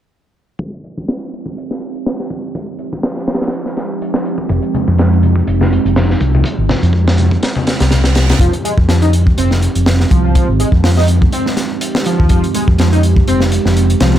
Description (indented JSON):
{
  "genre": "breakbeat, breaks",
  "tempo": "123 BPM",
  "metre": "4/4",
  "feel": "swing 55% on 16ths",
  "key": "F minor",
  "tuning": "A4 = 440 Hz",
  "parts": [
    { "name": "warbly tape-like pad", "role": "sustained chords", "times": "1.2-14.2 s", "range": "F3 to G4", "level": "-20 LUFS", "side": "right 4 dB", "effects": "chorus, built-in reverb, vintage 12-bit sampler grit, sidechain pumping" },
    { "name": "crunchy breakbeat drum kit", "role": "drums", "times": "0.6-14.2 s", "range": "hi-hat, kick drum, snare drum", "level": "-16 LUFS", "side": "equal", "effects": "high-pass filter on kick, high-pass filter on hats, high-pass filter on snare, high-pass filter on room" },
    { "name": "fingered electric bass", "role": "bass", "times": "4.5-14.2 s", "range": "F1 to F2", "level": "-12 LUFS", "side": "equal", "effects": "none" },
    { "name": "congas", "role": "percussion", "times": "4.7-8.4 s", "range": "none", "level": "-22 LUFS", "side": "left 4 dB", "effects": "none" },
    { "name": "reverse cymbal", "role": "sound effects", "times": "7.6-8.4 s", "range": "none", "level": "-26 LUFS", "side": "right 5 dB", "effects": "none" },
    { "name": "overdriven synth lead", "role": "riff", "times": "8.4-14.2 s", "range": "F3 to Eb4", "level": "-18 LUFS", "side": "equal", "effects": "tube saturation, ensemble chorus, ping-pong delay" }
  ],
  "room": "light reverb",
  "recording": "low-pass filter",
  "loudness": "-11 LUFS",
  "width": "side -11 dB against mid",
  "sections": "0.6-8.4 A section; 8.4-14.2 B section",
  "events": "filter sweep 0.6-8.4; reverse cymbal 7.6-8.4",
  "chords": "0.6 Fm9"
}